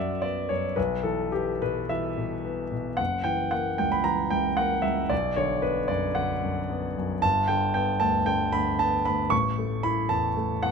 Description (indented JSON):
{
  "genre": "classical, romantic character piece for solo piano",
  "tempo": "113 BPM",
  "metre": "4/4",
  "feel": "rubato",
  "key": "B minor",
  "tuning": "A4 = 440 Hz",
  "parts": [
    { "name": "clear grand piano", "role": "solo", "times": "0.0-10.7 s", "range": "F#1 to C#6", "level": "-24 LUFS", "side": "equal", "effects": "none" }
  ],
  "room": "moderate stone room reverb, RT60 1.2 s",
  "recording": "close, detailed microphones",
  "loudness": "-24 LUFS",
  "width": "side -5 dB against mid",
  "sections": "0.0-10.7 A section",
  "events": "none",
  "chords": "0.0 B5; 0.8 E5/B; 3.0 F#7; 5.1 Bm; 7.2 G; 9.3 A",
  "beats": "0.22 | 0.76 1.31 1.90 2.45 | 2.99 3.53 4.06 4.58 | 5.11 5.64 6.17 6.70 | 7.22 7.75 8.27 8.80 | 9.31 9.85 10.37"
}